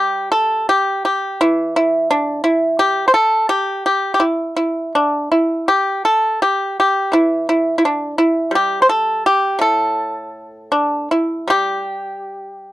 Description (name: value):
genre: chinese traditional, Chinese solo plucked strings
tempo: 77-88 BPM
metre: 2/4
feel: rubato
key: unclear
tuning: A4 = 440 Hz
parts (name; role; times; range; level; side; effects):
- pipa; solo; 0.0-12.7 s; A2 to C5; -15 LUFS; equal; none
room: little or no reverb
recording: dry, close 1970s-style studio recording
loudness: -14 LUFS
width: side -16 dB against mid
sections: 0.0-11.5 A section; 11.5-12.7 B section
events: none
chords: none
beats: 0.71 | 1.43 2.13 | 2.82 3.52 | 4.22 4.95 | 5.70 6.43 | 7.15 7.83 | 8.54 9.25 | 9.97 10.72 | 11.49 12.22